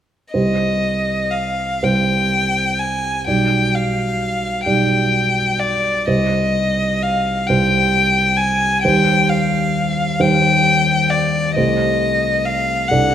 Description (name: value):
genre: classical, romantic duo for violin and grand piano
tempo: 40-45 BPM (dotted quarters)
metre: 6/8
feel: rubato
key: C minor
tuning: A4 = 440 Hz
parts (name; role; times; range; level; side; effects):
- rich violin; melody; 0.3-13.1 s; D5 to Ab5; -17 LUFS; left 2 dB; none
- dark baby grand piano; accompaniment; 0.3-13.1 s; B1 to D5; -18 LUFS; right 2 dB; none
room: moderate scoring stage reverb, RT60 1.7 s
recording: none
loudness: -15 LUFS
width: side -10 dB against mid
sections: 0.3-13.1 A section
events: none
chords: 0.3 Cm; 3.3 G7/B; 6.1 Cm; 8.8 Cm/Eb; 11.6 Am7b5/C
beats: | 0.34 1.82 | 3.26 4.65 | 6.07 7.49 | 8.84 10.20 | 11.56 12.91